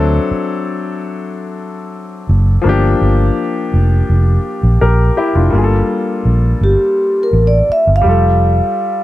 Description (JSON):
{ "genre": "lush 1970s-style soul", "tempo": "83 BPM", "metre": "4/4", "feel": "straight", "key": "G minor", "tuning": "A4 = 440 Hz", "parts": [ { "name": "warm concert grand piano", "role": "accompaniment", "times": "0.0-9.0 s", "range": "F3 to Bb4", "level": "-17 LUFS", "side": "left 3 dB", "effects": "none" }, { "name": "vintage muted fingered electric bass", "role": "bass", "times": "0.0-8.6 s", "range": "F1 to D2", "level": "-12 LUFS", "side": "equal", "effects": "none" }, { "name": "vibraphone with soft mallets", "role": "melody", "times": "6.6-9.0 s", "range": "G4 to F5", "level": "-13 LUFS", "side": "right 1 dB", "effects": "none" } ], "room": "small room ambience", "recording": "none", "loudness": "-11 LUFS", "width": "side -15 dB against mid", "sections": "0.0-5.5 A section; 5.5-9.0 B section", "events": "vibraphone solo 5.5-9.0", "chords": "0.0 D7; 2.7 Gm7; 5.5 Gm9; 8.1 Fadd9" }